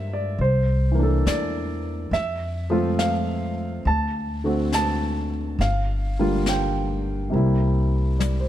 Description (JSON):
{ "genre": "jazz ballad", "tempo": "69 BPM", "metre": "4/4", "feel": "swing 69% on 8ths", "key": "unclear", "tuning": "A4 = 440 Hz", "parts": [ { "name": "warm baby grand piano", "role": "accompaniment", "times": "0.0-8.5 s", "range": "C3 to A5", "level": "-24 LUFS", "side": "right 1 dB", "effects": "none" }, { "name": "upright bass", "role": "bass", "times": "0.0-8.5 s", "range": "G1 to G2", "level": "-24 LUFS", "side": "equal", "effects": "none" }, { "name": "jazz brush drum kit", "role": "drums", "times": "0.4-8.5 s", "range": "brushed snare drum, hi-hat, snare drum, toms", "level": "-32 LUFS", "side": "left 4 dB", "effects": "none" } ], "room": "light reverb", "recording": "none", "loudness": "-21 LUFS", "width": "side -12 dB against mid", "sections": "0.0-8.5 A section", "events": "drum fill 8.2", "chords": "0.4 C13; 2.1 Fmaj7; 3.9 D7; 5.6 Gm7; 7.3 C7", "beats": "0.39 1.26 | 2.12 2.99 3.85 4.72 | 5.59 6.46 7.33 8.20" }